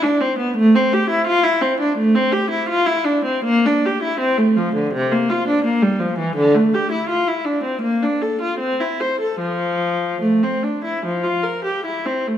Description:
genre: classical, baroque-style suite movement for unaccompanied viola.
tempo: 81 BPM.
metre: 4/4.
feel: uneven beats, rubato.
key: F major.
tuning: A4 = 440 Hz.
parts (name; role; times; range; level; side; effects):
warm viola; solo; 0.0-12.4 s; C3 to C5; -16 LUFS; equal; none.
room: wet recital hall reverb, RT60 1.6 s.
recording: minimal, uncompressed stereo recording.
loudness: -16 LUFS.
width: side -10 dB against mid.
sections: 0.0-12.4 A section.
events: none.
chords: none.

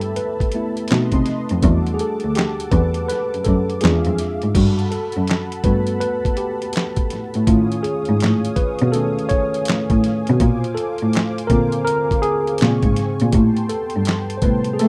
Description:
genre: R&B, neo-soul.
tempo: 82 BPM.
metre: 4/4.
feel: swing 63% on 16ths.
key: unclear.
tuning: A4 = 440 Hz.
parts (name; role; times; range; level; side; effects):
tine electric piano; accompaniment; 0.0-14.9 s; C3 to C#5; -24 LUFS; equal; overdrive.
warm analog pad; sustained chords; 0.0-14.9 s; B3 to Eb6; -34 LUFS; equal; chorus.
muted cello; bass; 0.0-14.9 s; D2 to A3; -21 LUFS; equal; none.
dusty soul sampler-style drum kit; drums; 0.0-14.9 s; crash cymbal, handclaps, hi-hat, kick drum, snare drum; -24 LUFS; equal; none.
room: light reverb.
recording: rough home demo mix.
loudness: -19 LUFS.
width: mono.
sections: 0.0-4.5 A section; 4.5-14.9 B section.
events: tine electric piano solo 0.0-4.5, 4.5-14.9.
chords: 0.0 G69; 0.9 B7b9; 1.6 Em11; 3.8 E7b9; 4.5 Gmaj9; 7.5 F7alt; 10.4 Bbmaj9; 12.6 Bbm9; 13.3 Am9.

